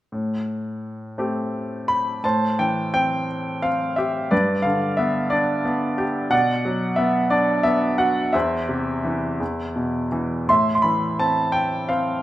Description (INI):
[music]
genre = classical, lyrical solo piano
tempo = 55-60 BPM (dotted quarters)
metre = 6/8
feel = rubato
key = A minor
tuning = A4 = 440 Hz
[part]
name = bright baby grand piano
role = solo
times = 0.1-12.2 s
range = E2 to C6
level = -20 LUFS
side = equal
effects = none
[sound]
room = moderate recital hall reverb, RT60 1.6 s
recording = minimal, uncompressed stereo recording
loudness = -19 LUFS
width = side -14 dB against mid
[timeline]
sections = 0.1-2.2 A section; 2.2-12.2 B section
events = none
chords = 0.1 Am7; 4.3 G; 6.3 Bm; 8.3 C/E; 9.4 E5; 10.5 Am